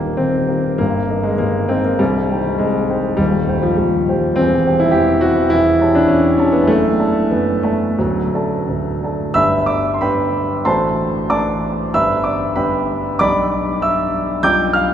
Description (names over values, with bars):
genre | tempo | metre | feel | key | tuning
classical, romantic character piece for solo piano | 86-106 BPM | 2/4 | rubato | G major from 4.4 s | A4 = 440 Hz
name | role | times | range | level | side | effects
warm concert grand piano | solo | 0.0-14.9 s | C1 to G6 | -14 LUFS | equal | none
room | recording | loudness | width
wet cathedral reverb, RT60 6.5 s | recorded in a church or concert hall | -14 LUFS | side -9 dB against mid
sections
0.0-9.3 A section; 9.3-14.9 B section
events
none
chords
0.0 Eb; 0.8 Eb/G; 2.0 Cm; 3.2 Cm/Eb; 4.4 C/E; 5.5 A7/E; 6.7 D/F#; 8.0 D; 9.3 G; 10.6 D7/A; 11.9 G; 13.2 G/B; 14.4 G7/B